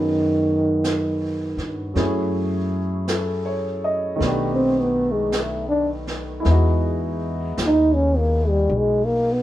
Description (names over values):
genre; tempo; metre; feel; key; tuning
jazz ballad; 54 BPM; 4/4; swing 66% on 8ths; B major; A4 = 440 Hz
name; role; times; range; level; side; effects
breathy trombone; melody; 0.0-9.4 s; D#3 to D#4; -19 LUFS; equal; none
warm baby grand piano; accompaniment; 0.0-9.4 s; D#3 to D#5; -26 LUFS; equal; none
upright bass; bass; 0.0-9.4 s; B1 to G2; -24 LUFS; equal; none
jazz brush drum kit; drums; 0.8-9.4 s; brushed snare drum, hi-hat, snare drum; -31 LUFS; right 2 dB; none
room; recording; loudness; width
light reverb; band playing live in one room; -19 LUFS; side -14 dB against mid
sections
0.0-9.4 A section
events
trombone solo 0.0-9.4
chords
0.0 B69; 2.0 F#m9; 4.2 B7alt; 6.5 Emaj9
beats
0.84 | 1.96 3.08 4.21 5.33 | 6.45 7.57 8.70